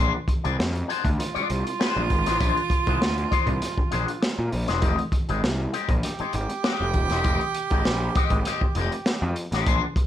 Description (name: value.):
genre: funk.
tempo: 99 BPM.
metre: 4/4.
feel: straight.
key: F dorian.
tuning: A4 = 441 Hz.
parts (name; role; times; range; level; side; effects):
electric guitar with an envelope filter; accompaniment; 0.0-10.0 s; Ab3 to D5; -28 LUFS; left 8 dB; phaser.
fuzz picked electric bass; bass; 0.0-9.8 s; Eb1 to Bb2; -27 LUFS; equal; overdrive.
crunchy breakbeat drum kit; drums; 0.3-10.1 s; hi-hat, kick drum, snare drum; -25 LUFS; equal; none.
breathy baritone saxophone; second line; 1.2-9.3 s; F4 to G4; -29 LUFS; right 6 dB; none.
room: light reverb.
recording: none.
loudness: -22 LUFS.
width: side -11 dB against mid.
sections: 0.0-10.1 A section.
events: none.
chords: 0.0 Bb9; 4.8 Fm9.